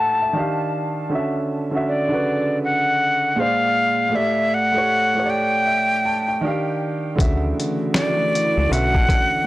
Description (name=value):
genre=lo-fi hip hop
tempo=79 BPM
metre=4/4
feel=swing 64% on 16ths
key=D major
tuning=A4 = 439 Hz
part: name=breathy bright jazz flute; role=melody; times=0.0-9.5 s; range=D5 to A5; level=-20 LUFS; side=left 1 dB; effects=low-pass filter, tape echo
part: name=warm upright piano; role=accompaniment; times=0.0-9.5 s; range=A2 to A5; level=-23 LUFS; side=right 1 dB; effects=low-pass filter
part: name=hollow soft pad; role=sustained chords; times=7.2-9.4 s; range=E3 to F#4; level=-26 LUFS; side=left 1 dB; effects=chorus
part: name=deep dub fingered electric bass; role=bass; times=7.2-9.0 s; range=B1 to D2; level=-21 LUFS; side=equal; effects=tube saturation
part: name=dusty soul sampler-style drum kit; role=drums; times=7.2-9.3 s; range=finger snaps, hi-hat, kick drum, snare drum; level=-20 LUFS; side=equal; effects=none
room=light reverb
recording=dry, gritty hardware recording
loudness=-17 LUFS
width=side -16 dB against mid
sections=0.0-7.2 A section; 7.2-9.5 B section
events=filter sweep 0.0-7.2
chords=0.3 Ebmaj9; 1.1 Dmaj9; 3.4 Bb9; 4.1 A7sus4; 6.4 Ebmaj9; 7.2 Dmaj9